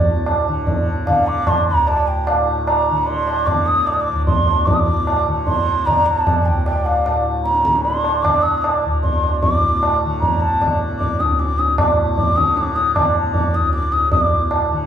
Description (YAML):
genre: indian classical, Hindustani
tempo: 152 BPM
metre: 3/4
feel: straight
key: D raga bhairavi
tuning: A4 = 442 Hz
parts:
  - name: mellow bansuri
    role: melody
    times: 0.0-14.7 s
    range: D5 to Eb6+21c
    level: -18 LUFS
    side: left 1 dB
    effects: none
  - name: tanpura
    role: drone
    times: 0.0-14.9 s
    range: D2 to D3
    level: -23 LUFS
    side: left 1 dB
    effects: none
  - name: tabla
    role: percussion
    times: 0.3-14.7 s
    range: none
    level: -18 LUFS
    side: right 1 dB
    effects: none
room: wet large studio reverb, RT60 1.3 s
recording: band playing live in one room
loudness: -15 LUFS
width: side -9 dB against mid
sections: 0.0-4.7 A section; 4.7-14.1 B section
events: speeding up 0.0-14.9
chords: none